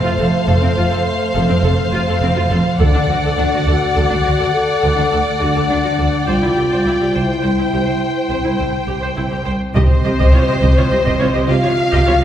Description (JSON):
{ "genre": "cinematic, epic orchestral film score", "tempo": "69 BPM (dotted quarters)", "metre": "12/8", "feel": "straight", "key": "unclear", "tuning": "A4 = 440 Hz", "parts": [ { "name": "clear symphonic violin section", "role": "melody", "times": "0.0-12.2 s", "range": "C5 to G5", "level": "-22 LUFS", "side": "left 3 dB", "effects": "none" }, { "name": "clear symphonic violin section", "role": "second line", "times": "0.0-12.2 s", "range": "C5 to F5", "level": "-22 LUFS", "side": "left 2 dB", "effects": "none" }, { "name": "bright symphonic viola section", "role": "accompaniment", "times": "0.0-12.2 s", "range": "C4 to Eb5", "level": "-24 LUFS", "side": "right 1 dB", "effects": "none" }, { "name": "dark French horn section", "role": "sustained chords", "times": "0.0-12.2 s", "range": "A3 to A4", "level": "-21 LUFS", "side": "equal", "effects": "none" }, { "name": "rich symphonic cello section", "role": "bass", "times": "0.1-12.2 s", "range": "C2 to C3", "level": "-22 LUFS", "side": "right 1 dB", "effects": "none" }, { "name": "warm symphonic double bass section", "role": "bass", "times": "0.2-12.1 s", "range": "F1 to D2", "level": "-21 LUFS", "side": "right 1 dB", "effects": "none" }, { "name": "taiko ensemble", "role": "drums", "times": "2.8-4.4, 9.8-12.2 s", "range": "none", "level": "-15 LUFS", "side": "equal", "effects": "none" }, { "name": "mellow tuba", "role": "bass", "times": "9.8-12.1 s", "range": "C2", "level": "-22 LUFS", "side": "right 2 dB", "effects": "none" } ], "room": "wet scoring stage reverb, RT60 1.9 s", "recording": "heard from further back in the room", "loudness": "-13 LUFS", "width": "side -10 dB against mid", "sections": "0.0-9.8 A section; 9.8-12.2 B section", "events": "none", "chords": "0.0 F; 2.8 D; 6.3 C; 9.8 Cm" }